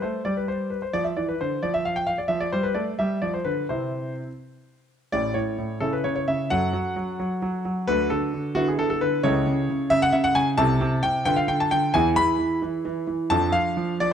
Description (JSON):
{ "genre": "classical-period piano sonatina", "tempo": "88 BPM (dotted quarters)", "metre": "6/8", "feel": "rubato", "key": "C major, A major from 5.1 s", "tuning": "A4 = 440 Hz", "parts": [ { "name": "clear concert grand piano", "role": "solo", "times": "0.0-14.1 s", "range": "A1 to B5", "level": "-22 LUFS", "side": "equal", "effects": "none" } ], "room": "moderate recital hall reverb, RT60 1.5 s", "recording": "close, detailed microphones", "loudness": "-22 LUFS", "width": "side -8 dB against mid", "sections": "0.0-5.1 A section; 5.1-14.1 B section", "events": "none", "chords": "0.0 Am11; 0.9 Dm; 2.3 Fmaj13; 3.0 G5; 3.7 C; 5.1 A; 5.8 C#m; 6.5 F#m; 7.9 D; 8.5 E5/D; 9.2 A/C#; 10.6 Am/C; 11.3 Bdim/D; 11.9 E; 13.3 Dm/F" }